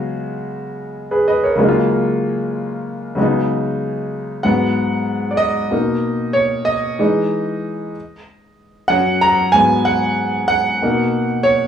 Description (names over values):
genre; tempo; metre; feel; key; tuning
soul; 94 BPM; 4/4; straight; unclear; A4 = 440 Hz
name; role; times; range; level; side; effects
clear grand piano; solo; 0.0-11.7 s; Gb2 to Bb5; -15 LUFS; equal; none
room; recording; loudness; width
light reverb; band playing live in one room, studio ambience; -15 LUFS; side -8 dB against mid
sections
0.0-4.4 A section; 4.4-11.7 B section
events
grand piano solo 4.4-11.7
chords
0.0 Db7sus4; 1.6 Gbmaj9; 3.2 Db9sus4; 4.4 Abm7; 5.7 Bmaj7; 7.0 Emaj7; 7.9 Ebm7; 9.5 Abm7; 10.8 Bmaj7